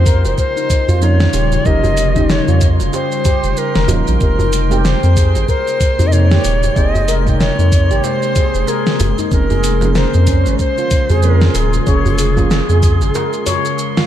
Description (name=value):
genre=organic downtempo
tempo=94 BPM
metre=4/4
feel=swing 58% on 16ths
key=unclear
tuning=A4 = 443 Hz
part: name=reedy Native American-style cedar flute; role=melody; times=0.0-13.8 s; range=Ab4 to Eb5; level=-20 LUFS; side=equal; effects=ping-pong delay, shimmer reverb
part: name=deep mellow chord stab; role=accompaniment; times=0.0-14.1 s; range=C3 to G5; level=-24 LUFS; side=right 4 dB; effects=chorus, sidechain pumping, ping-pong delay, shimmer reverb
part: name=bowed-like drone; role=sustained chords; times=0.0-14.1 s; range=C3 to G5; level=-23 LUFS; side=left 1 dB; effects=built-in reverb, sidechain pumping, shimmer reverb
part: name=handpan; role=arpeggios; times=0.0-14.1 s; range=Db4 to Db5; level=-22 LUFS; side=equal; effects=ping-pong delay, shimmer reverb
part: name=round analog bass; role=bass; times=0.0-13.1 s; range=Eb1 to F2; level=-14 LUFS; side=equal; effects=sidechain pumping
part: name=drifting glass-harmonics texture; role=texture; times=0.0-14.1 s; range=C6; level=-29 LUFS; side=right 3 dB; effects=chorus, built-in reverb, shimmer reverb
part: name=deep house drum kit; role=drums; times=0.1-14.1 s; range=hi-hat, shaker, snare drum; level=-21 LUFS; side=equal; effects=none
part: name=electronic kick drum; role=drums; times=0.1-13.0 s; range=none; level=-15 LUFS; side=equal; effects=none
part: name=djembe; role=percussion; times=0.3-14.1 s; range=none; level=-22 LUFS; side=right 1 dB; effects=none
room=light reverb, digital ambience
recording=dark, warm production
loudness=-11 LUFS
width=side -11 dB against mid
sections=0.0-14.1 A section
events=break 13.1-14.1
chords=0.0 Eb9; 4.2 Abmaj9; 9.3 Bbm7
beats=0.38 1.02 | 1.66 2.30 2.93 3.57 | 4.21 4.85 5.49 6.13 | 6.76 7.40 8.04 8.68 | 9.32 9.96 10.59 11.23 | 11.87 12.51 13.15 13.79